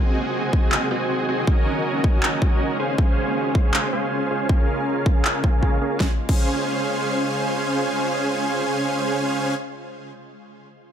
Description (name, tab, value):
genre	future bass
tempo	159 BPM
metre	4/4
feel	half-time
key	Db major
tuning	A4 = 441 Hz
part	shimmering ambient pad	sustained chords	0.0-9.3 s	Db3 to C5	-30 LUFS	equal	chorus, built-in reverb, sidechain pumping
part	dense compressed supersaw	riff	0.0-9.5 s	C4 to Ab5	-23 LUFS	right 1 dB	sidechain pumping, low-pass filter, digital delay
part	electronic kick drum	drums	0.5-6.4 s	none	-19 LUFS	equal	overdrive
part	big-room dance drum kit	drums	0.7-6.4 s	crash cymbal, handclaps, snare drum	-24 LUFS	left 1 dB	overdrive
room	light reverb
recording	none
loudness	-19 LUFS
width	side -9 dB against mid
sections	0.0-6.0 A section; 6.0-9.0 B section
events	filter sweep on supersaw synth 0.0-6.0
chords	0.0 Ab7; 1.5 Gb69; 2.8 Dbmaj7; 4.5 Bbm7; 6.0 Dbmaj7